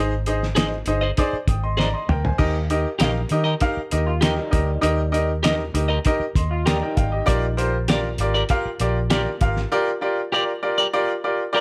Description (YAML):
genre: uptempo 1960s-style soul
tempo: 98 BPM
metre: 4/4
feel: straight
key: Eb major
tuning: A4 = 441 Hz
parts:
  - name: bright upright piano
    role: accompaniment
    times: 0.0-11.6 s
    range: Eb4 to Eb6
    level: -26 LUFS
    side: equal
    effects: none
  - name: vintage muted fingered electric bass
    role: bass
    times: 0.0-9.6 s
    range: G1 to Eb3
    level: -26 LUFS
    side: equal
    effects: none
  - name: cloth-damped thuddy drum kit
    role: drums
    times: 0.3-9.6 s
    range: hi-hat, kick drum, snare drum, splash cymbal, toms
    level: -25 LUFS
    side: equal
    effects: none
  - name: electric guitar at the edge of break-up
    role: stabs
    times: 0.6-11.6 s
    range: G4 to Eb5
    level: -26 LUFS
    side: equal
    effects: none
  - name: electric guitar through a small old amp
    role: riff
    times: 4.1-7.7 s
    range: G3 to G4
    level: -32 LUFS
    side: equal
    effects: lush chorus
room: studio ambience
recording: none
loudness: -22 LUFS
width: mono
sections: 0.0-11.6 A section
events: drum fill 1.8-2.4; upright piano fill 6.4-7.3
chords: 0.0 Ab; 2.4 Eb